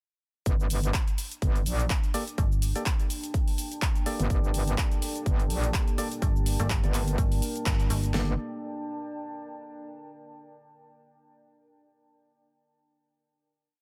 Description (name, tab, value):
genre	bass house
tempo	125 BPM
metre	4/4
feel	swing 56% on 16ths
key	G minor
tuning	A4 = 444 Hz
part	metallic wobble bass	bass	0.5-8.4 s	G1 to Bb1	-30 LUFS	equal	chorus, overdrive, sidechain pumping
part	big-room dance drum kit	drums	0.5-8.3 s	kick drum, snare drum	-29 LUFS	equal	none
part	big-room dance drum kit	drums	0.5-8.1 s	handclaps, hi-hat, shaker	-37 LUFS	equal	none
part	deep dark ambient pad	texture	2.0-10.0 s	Bb3 to A5	-42 LUFS	equal	chorus, built-in reverb, sidechain pumping
part	percussive organ stab	stabs	2.1-8.3 s	Bb3 to D5	-39 LUFS	equal	chorus, sidechain pumping, digital delay
part	metallic FM bass	bass	2.4-2.7, 6.2-8.1 s	G1	-30 LUFS	equal	overdrive, sidechain pumping
part	dark analog pad	sustained chords	4.3-8.4 s	Bb3 to Bb4	-41 LUFS	equal	lush chorus, sidechain pumping
room	digital ambience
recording	none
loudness	-28 LUFS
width	mono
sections	0.5-8.1 drop; 8.1-10.1 final chord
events	drop 0.5-8.1; band accent 7.7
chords	0.5 Gmadd9